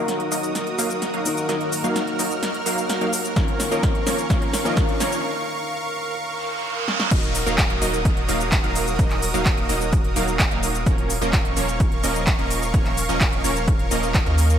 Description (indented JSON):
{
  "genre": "EDM, festival progressive house",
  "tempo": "128 BPM",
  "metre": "4/4",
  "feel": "straight",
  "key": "Eb minor",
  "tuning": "A4 = 439 Hz",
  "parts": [
    { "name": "warm grand piano", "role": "accompaniment", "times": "0.0-7.1 s", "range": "Eb3 to Bb4", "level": "-29 LUFS", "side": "left 5 dB", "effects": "sidechain pumping, ping-pong delay" },
    { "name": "supersaw pad", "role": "sustained chords", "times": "0.0-14.6 s", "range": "Gb4 to F6", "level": "-28 LUFS", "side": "right 2 dB", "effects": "sidechain pumping" },
    { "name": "supersaw stab", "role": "riff", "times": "0.0-14.6 s", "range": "F3 to F5", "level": "-25 LUFS", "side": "right 1 dB", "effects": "sidechain pumping, low-pass filter, ping-pong delay" },
    { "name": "saturated sub bass", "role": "bass", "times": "0.0-14.6 s", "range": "Eb1 to Eb2", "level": "-26 LUFS", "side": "equal", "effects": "sidechain pumping, high-pass filter" },
    { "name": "riser, reverse cymbal and downlifter", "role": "sound effects", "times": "0.0-10.9 s", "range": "none", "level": "-32 LUFS", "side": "right 3 dB", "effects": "none" },
    { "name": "big-room dance drum kit", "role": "drums", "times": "0.1-14.6 s", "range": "crash cymbal, handclaps, hi-hat, shaker, snare drum", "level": "-26 LUFS", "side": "equal", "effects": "overdrive" },
    { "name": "electronic kick drum", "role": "drums", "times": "3.4-14.2 s", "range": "none", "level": "-21 LUFS", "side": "equal", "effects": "overdrive" }
  ],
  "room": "light reverb",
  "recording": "none",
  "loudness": "-19 LUFS",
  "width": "side -9 dB against mid",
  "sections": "0.0-7.1 A section; 7.1-14.6 B section",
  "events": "build-up 0.0-7.1; drum fill 0.0-5.2, 6.9; filter sweep on supersaw synth 0.0-7.1; break 5.2-7.1; reverse cymbal 6.4-7.1; drop 7.1-14.6",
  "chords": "0.0 Ebm; 3.4 Bbm/Eb; 7.1 Ebm; 10.9 Bbm/Eb"
}